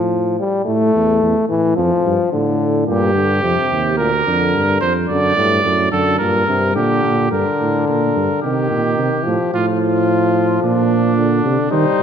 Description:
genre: classical, imitative canzona for brass ensemble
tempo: 109 BPM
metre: 4/4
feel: straight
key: G minor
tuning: A4 = 440 Hz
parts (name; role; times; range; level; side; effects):
- clear trombone; accompaniment; 0.0-12.0 s; A2 to A3; -18 LUFS; left 2 dB; none
- mellow tuba; bass; 0.0-12.0 s; D2 to Eb3; -19 LUFS; right 3 dB; none
- clear trumpet; second line; 2.9-12.0 s; D4 to D5; -18 LUFS; right 2 dB; none
- mellow trumpet; melody; 11.7-12.0 s; C5; -19 LUFS; left 15 dB; none
room: moderate concert hall reverb, RT60 1.8 s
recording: dark, warm production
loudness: -14 LUFS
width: side -8 dB against mid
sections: 0.0-7.3 A section; 7.3-12.0 B section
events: none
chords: 0.0 F; 0.7 A5; 1.8 Dm/F; 2.9 Gm; 4.0 Bb/D; 5.1 D/F#; 6.2 Gm; 8.4 Cm; 9.5 F/A; 10.6 Bb

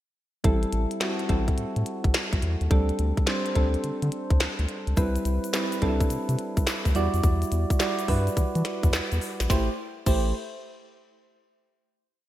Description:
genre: R&B, new jack swing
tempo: 106 BPM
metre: 4/4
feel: swing 66% on 16ths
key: A dorian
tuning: A4 = 439 Hz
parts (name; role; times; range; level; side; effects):
- soft electric-piano-like synth keys; accompaniment; 0.4-10.3 s; G3 to D5; -28 LUFS; right 1 dB; chorus
- round analog bass; bass; 0.4-10.3 s; A1 to E3; -26 LUFS; equal; none
- glitchy drum kit; drums; 0.4-10.2 s; crash cymbal, handclaps, hi-hat, kick drum, snare drum; -26 LUFS; equal; gated reverb
- egg shaker; percussion; 5.0-10.3 s; none; -42 LUFS; left 10 dB; none
room: light reverb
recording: bright 1980s-style digital production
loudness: -23 LUFS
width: side -14 dB against mid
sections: 0.4-9.5 verse; 9.5-11.8 final chord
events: none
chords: 0.4 Am7; 2.7 D7sus4; 5.0 Cmaj7; 7.0 Em9; 9.5 Am7

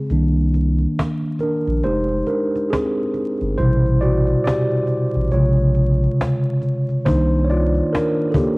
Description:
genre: lo-fi hip hop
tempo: 69 BPM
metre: 4/4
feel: swing 61% on 16ths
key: unclear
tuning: A4 = 440 Hz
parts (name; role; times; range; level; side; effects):
- mellow tine electric piano; accompaniment; 0.0-8.6 s; B2 to D5; -18 LUFS; equal; medium stereo tremolo, cassette tape
- saturated sub bass; bass; 0.1-7.8 s; F1 to C2; -20 LUFS; equal; none
- cajon; drums; 0.1-8.6 s; none; -24 LUFS; equal; cassette tape
room: light reverb, studio reverb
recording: home recording on cassette, vinyl crackle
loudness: -16 LUFS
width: side -27 dB against mid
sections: 0.0-8.6 A section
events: break 0.0-7.1; tine electric piano solo 0.0-8.6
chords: 0.1 Cm9; 1.8 Fm9; 3.6 Am9; 5.3 Bbm9; 7.1 Cm9

